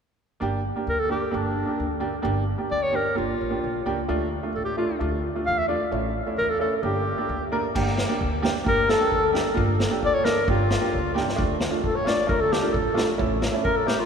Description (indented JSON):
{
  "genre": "klezmer",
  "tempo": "132 BPM",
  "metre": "2/4",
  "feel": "straight",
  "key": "G dorian sharp4",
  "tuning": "A4 = 440 Hz",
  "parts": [
    { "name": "clear upright piano", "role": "accompaniment", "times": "0.4-14.0 s", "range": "A3 to Bb4", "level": "-27 LUFS", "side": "right 3 dB", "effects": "none" },
    { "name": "upright bass", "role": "bass", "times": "0.4-13.9 s", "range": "G1 to E2", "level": "-30 LUFS", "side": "equal", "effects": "none" },
    { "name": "breathy clarinet", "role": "melody", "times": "0.9-14.1 s", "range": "D4 to F5", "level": "-25 LUFS", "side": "left 1 dB", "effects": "none" },
    { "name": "street-band drum kit", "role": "drums", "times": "7.8-14.0 s", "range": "crash cymbal, kick drum, snare drum", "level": "-27 LUFS", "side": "left 1 dB", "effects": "none" },
    { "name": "mellow accordion", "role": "second line", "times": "8.7-14.1 s", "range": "F4 to D5", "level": "-29 LUFS", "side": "left 4 dB", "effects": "none" }
  ],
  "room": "wet cathedral reverb, RT60 6.2 s",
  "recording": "recorded in a church or concert hall",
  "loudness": "-22 LUFS",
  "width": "side -6 dB against mid",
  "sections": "0.4-7.7 A section; 7.7-14.1 A section",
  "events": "drum fill 11.2",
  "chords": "0.4 Gm; 4.1 Dm; 5.9 A; 6.8 Gm; 11.4 Dm; 13.2 A",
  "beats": "| 0.42 0.88 | 1.34 1.80 | 2.25 2.71 | 3.17 3.63 | 4.09 4.54 | 5.00 5.46 | 5.92 6.37 | 6.83 7.29 | 7.74 8.20 | 8.66 9.11 | 9.57 10.02 | 10.48 10.93 | 11.38 11.84 | 12.29 12.75 | 13.20 13.65"
}